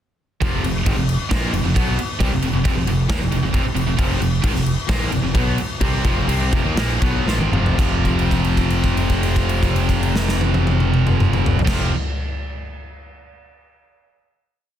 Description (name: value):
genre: hard rock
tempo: 114-135 BPM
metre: 4/4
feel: straight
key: unclear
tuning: A4 = 440 Hz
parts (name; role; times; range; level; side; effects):
- distorted electric guitar; riff; 0.4-11.9 s; F2 to C4; -24 LUFS; left 10 dB; distortion
- scooped high-gain guitar; riff; 0.4-11.9 s; F2 to C4; -23 LUFS; right 8 dB; distortion
- modern bright fingered electric bass; bass; 0.4-11.9 s; F1 to Eb2; -22 LUFS; equal; none
- big rock drum kit; drums; 0.4-11.8 s; crash cymbal, kick drum, snare drum, toms; -21 LUFS; equal; none
room: studio reverb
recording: dense, heavily limited modern master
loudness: -16 LUFS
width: side -10 dB against mid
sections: 0.4-7.8 riff; 7.8-12.0 final chord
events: slowing down 4.0-7.8; drum fill 7.3-7.8; held note 7.8-11.7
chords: 0.4 Fm; 7.8 F5